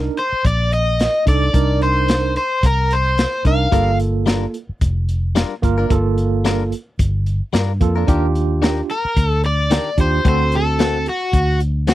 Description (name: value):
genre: straight-eighth soul blues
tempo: 110 BPM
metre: 4/4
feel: swing 56% on 16ths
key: G minor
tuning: A4 = 438 Hz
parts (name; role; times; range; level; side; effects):
- tine electric piano; accompaniment; 0.0-11.1 s; Bb3 to Bb4; -21 LUFS; right 6 dB; medium stereo tremolo
- vintage muted fingered electric bass; bass; 0.0-11.9 s; F1 to G2; -18 LUFS; equal; none
- crunchy overdriven guitar; melody; 0.2-4.0, 8.9-11.9 s; F#4 to F5; -19 LUFS; left 1 dB; none
- crunchy breakbeat drum kit; drums; 0.2-11.9 s; hi-hat, kick drum, snare drum; -18 LUFS; equal; none
- direct-recorded clean electric guitar; stabs; 3.7-11.9 s; D3 to Bb4; -23 LUFS; left 7 dB; none
room: little or no reverb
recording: dry, close 1970s-style studio recording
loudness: -15 LUFS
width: side -15 dB against mid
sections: 0.0-11.9 A section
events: none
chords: 0.0 Cm7; 3.7 Gm7; 8.1 Ebmaj7; 10.3 D7